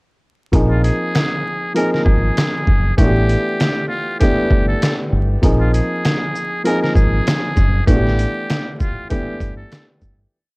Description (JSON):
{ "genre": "hip hop, boom-bap hip-hop", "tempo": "98 BPM", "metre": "4/4", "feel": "swing 56% on 16ths", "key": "unclear", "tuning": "A4 = 439 Hz", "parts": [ { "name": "dark upright piano", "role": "accompaniment", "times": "0.5-10.4 s", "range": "E3 to Ab4", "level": "-20 LUFS", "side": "equal", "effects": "high-pass filter, low-pass filter" }, { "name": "deep dub fingered electric bass", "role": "bass", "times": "0.5-10.3 s", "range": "Gb1 to Bb1", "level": "-17 LUFS", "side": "equal", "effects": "tube saturation" }, { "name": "trip hop sampler-style drum kit", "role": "drums", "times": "0.5-10.2 s", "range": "handclaps, hi-hat, kick drum, shaker, snare drum", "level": "-18 LUFS", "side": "equal", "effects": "none" }, { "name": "trumpet with metal mute", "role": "melody", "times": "0.7-9.8 s", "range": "F4 to Bb4", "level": "-24 LUFS", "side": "equal", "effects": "high-pass filter, low-pass filter" } ], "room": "light reverb", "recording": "worn, warbling old tape, cassette tape, vinyl crackle, warbly pitch drift", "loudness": "-14 LUFS", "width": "side -28 dB against mid", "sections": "0.5-10.3 verse", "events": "fade-out 7.9-10.3", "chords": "0.5 Bb9sus4; 3.0 A9sus4; 5.4 Bb9sus4; 7.9 A9sus4", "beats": "| 0.53 1.14 1.76 2.37 | 2.98 3.59 4.21 4.82 | 5.43 6.04 6.65 7.27 | 7.88 8.49 9.10 9.71" }